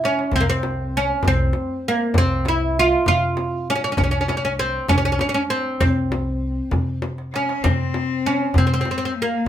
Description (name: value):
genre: Arabic maqam ensemble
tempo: 66 BPM (dotted quarters)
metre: 6/8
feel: straight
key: C maqam hijaz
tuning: A4 = 440 Hz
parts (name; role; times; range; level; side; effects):
- oud; melody; 0.0-9.5 s; Bb3 to F4; -20 LUFS; right 1 dB; none
- upright bass; bass; 0.0-8.8 s; C2 to C3; -25 LUFS; equal; none
- darbuka; percussion; 0.0-8.7 s; none; -26 LUFS; equal; none
- frame drum; percussion; 0.3-9.0 s; none; -25 LUFS; left 1 dB; none
- clear cello; second line; 7.3-9.5 s; Bb3 to Db4; -26 LUFS; left 7 dB; none
room: moderate studio reverb, RT60 0.6 s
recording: minimal, uncompressed stereo recording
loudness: -18 LUFS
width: side -10 dB against mid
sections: 0.0-7.6 A section; 7.6-9.5 A section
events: drum fill 0.0-0.3, 7.0-7.6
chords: none